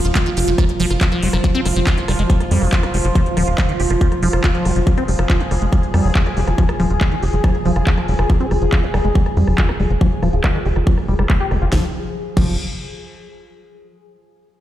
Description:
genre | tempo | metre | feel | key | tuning
psychedelic trance | 140 BPM | 4/4 | straight | F minor | A4 = 440 Hz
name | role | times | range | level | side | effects
bubbling stepped-filter texture | sustained chords | 0.0-11.8 s | F3 to Ab4 | -24 LUFS | equal | chorus, built-in reverb, sidechain pumping
liquid acid bass | riff | 0.0-12.6 s | Eb3 to G4 | -23 LUFS | moving between left 3 dB and right 3 dB | phaser, auto-pan, sidechain pumping, ping-pong delay
tight sequencer bass | bass | 0.0-12.6 s | Eb1 to F2 | -18 LUFS | equal | none
techno drum kit | drums | 0.0-12.5 s | crash cymbal, handclaps, hi-hat, rim click, snare drum | -26 LUFS | equal | low-pass filter on hats, low-pass filter on cymbals, low-pass filter on snare
electronic kick drum | drums | 0.2-12.5 s | none | -16 LUFS | equal | none
room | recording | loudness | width
light reverb | played on a big sound system in a bare room, large studio reverb | -14 LUFS | side -13 dB against mid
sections
0.0-11.7 A section; 11.7-13.4 B section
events
filter sweep on analog synth bass 0.0-11.7; filter sweep on acid bass 0.0-11.7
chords
0.0 F5; 11.7 N.C.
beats
0.15 0.58 1.01 | 1.44 1.87 2.30 2.73 | 3.15 3.58 4.01 4.44 | 4.87 5.30 5.72 6.15 | 6.58 7.01 7.44 7.87 | 8.30 8.72 9.15 9.58 | 10.01 10.44 10.87 11.30 | 11.72 12.15

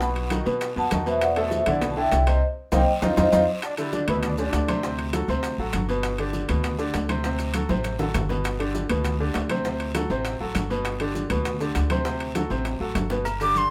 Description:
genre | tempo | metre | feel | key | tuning
latin, salsa | 199 BPM | 4/4 | straight | G major | A4 = 440 Hz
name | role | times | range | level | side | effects
vibraphone with soft mallets | melody | 0.0-3.4 s | C5 to B5 | -26 LUFS | equal | none
bright upright piano | accompaniment | 0.0-13.7 s | B2 to C5 | -30 LUFS | equal | none
upright bass | bass | 0.0-13.6 s | G1 to B2 | -30 LUFS | equal | none
bongos and cowbell | percussion | 0.0-13.7 s | none | -38 LUFS | equal | none
congas | percussion | 0.0-13.7 s | none | -34 LUFS | equal | none
guiro | percussion | 0.0-13.7 s | none | -44 LUFS | equal | none
maracas | percussion | 0.0-13.7 s | none | -47 LUFS | equal | none
timbales and agogo bells | percussion | 0.2-13.6 s | none | -35 LUFS | equal | none
clear trombone section | second line | 3.6-4.9 s | D4 to E4 | -32 LUFS | equal | none
breathy bright jazz flute | melody | 13.4-13.7 s | C6 to D6 | -22 LUFS | equal | none
room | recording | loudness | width
light reverb | none | -24 LUFS | mono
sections
0.0-3.6 A section; 3.6-13.3 B section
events
band accent 2.4-3.6; drum fill 3.0-3.6, 7.5-8.4, 12.7-13.3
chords
0.0 B7; 1.2 Em7; 2.4 Cm7; 3.0 F5; 3.6 G; 4.8 D7; 6.0 G; 7.2 D7; 8.4 G; 9.6 D7; 10.9 G; 12.1 D7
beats
| 0.01 0.31 0.61 0.92 | 1.22 1.52 1.82 2.12 | 2.42 2.72 3.02 3.33 | 3.63 3.93 4.23 4.53 | 4.83 5.13 5.43 5.74 | 6.04 6.34 6.64 6.94 | 7.24 7.54 7.84 8.14 | 8.45 8.75 9.05 9.35 | 9.65 9.95 10.25 10.55 | 10.85 11.15 11.45 11.75 | 12.05 12.35 12.65 12.96 | 13.26 13.55

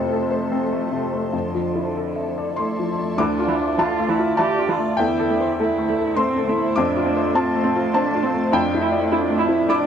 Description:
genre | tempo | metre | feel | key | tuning
neoclassical piano and strings | 101 BPM | 3/4 | rubato | D minor | A4 = 441 Hz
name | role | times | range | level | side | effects
muted cello | second line | 0.0-9.9 s | D3 to G4 | -24 LUFS | right 5 dB | none
felt-muted upright piano | accompaniment | 0.0-9.9 s | D2 to D6 | -21 LUFS | left 3 dB | none
granular cloud pad | sustained chords | 0.0-9.9 s | D3 to E5 | -27 LUFS | right 2 dB | built-in reverb
muted viola | accompaniment | 3.2-9.8 s | E3 to E4 | -25 LUFS | right 2 dB | none
room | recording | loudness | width
light reverb | none | -18 LUFS | side -8 dB against mid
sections
0.0-3.2 A section; 3.2-9.9 B section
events
none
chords
0.0 F; 1.3 Dmadd9/F; 3.2 Dmadd9; 5.0 Am/E; 6.8 F; 8.5 Dmadd9/F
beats
0.11 0.71 | 1.33 1.95 2.58 | 3.19 3.78 4.38 | 4.98 5.58 6.17 | 6.77 7.36 7.95 | 8.54 9.12 9.70

